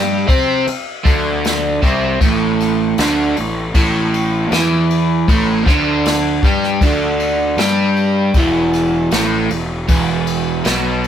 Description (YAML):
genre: blues rock power trio and southern rock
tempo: 78 BPM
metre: 4/4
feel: straight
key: unclear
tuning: A4 = 442 Hz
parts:
  - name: crunchy overdriven guitar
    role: riff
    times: 0.0-11.1 s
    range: E2 to C5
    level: -16 LUFS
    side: right 1 dB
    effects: none
  - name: fuzz picked electric bass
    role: bass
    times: 0.0-11.1 s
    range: E1 to C3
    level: -20 LUFS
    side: left 1 dB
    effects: overdrive
  - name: jazz brush drum kit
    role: drums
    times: 0.3-11.1 s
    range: kick drum, ride cymbal, snare drum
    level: -18 LUFS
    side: left 1 dB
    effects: none
room: light reverb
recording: band playing live in one room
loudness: -13 LUFS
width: side -9 dB against mid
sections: 0.0-11.1 A section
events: none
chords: 0.0 D5; 2.2 A5; 8.3 E5